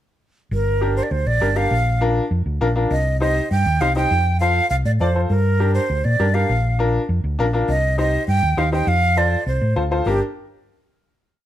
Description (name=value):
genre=latin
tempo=202 BPM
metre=4/4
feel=straight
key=G minor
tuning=A4 = 440 Hz
part: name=breathy jazz flute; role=melody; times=0.5-10.2 s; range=G4 to G5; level=-21 LUFS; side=right 2 dB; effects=none
part: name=hollow-body short-scale fingered electric bass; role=bass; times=0.5-10.2 s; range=G1 to Bb2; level=-19 LUFS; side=equal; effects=none
part: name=bright upright piano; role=accompaniment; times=0.8-10.2 s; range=D4 to D5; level=-23 LUFS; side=left 2 dB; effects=none
room=light reverb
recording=dark, warm production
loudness=-17 LUFS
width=side -12 dB against mid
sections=0.5-10.1 A section; 10.1-11.2 final chord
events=none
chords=0.5 Gm; 1.7 Bb; 2.9 Cm; 4.1 F; 5.3 Gm; 6.5 Bb; 7.7 Cm; 8.9 F; 10.1 Gm